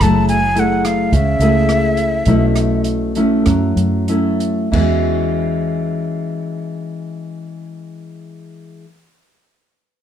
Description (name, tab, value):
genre	bossa nova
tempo	92-108 BPM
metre	4/4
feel	straight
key	E major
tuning	A4 = 440 Hz
part	breathy jazz flute	melody	0.0-2.9 s	E5 to A5	-18 LUFS	equal	plate reverb
part	nylon-string guitar	accompaniment	0.0-8.9 s	B2 to G#4	-18 LUFS	left 1 dB	none
part	fingered electric bass	bass	0.0-8.8 s	F#1 to F#2	-18 LUFS	right 1 dB	none
part	open jazz drum kit	drums	0.0-4.9 s	crash cymbal, hi-hat, kick drum, rim click	-24 LUFS	right 1 dB	none
room	moderate studio reverb, RT60 0.8 s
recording	dark, warm production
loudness	-14 LUFS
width	side -9 dB against mid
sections	0.0-4.7 A section; 4.7-7.3 B section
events	flute solo 0.0-4.7; slowing down 0.0-4.7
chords	0.0 F#m9; 2.3 B9sus4; 4.7 E69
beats	| 0.00 0.56 1.12 1.69 | 2.27 2.86 3.47 4.09 | 4.73 5.39 6.04 6.70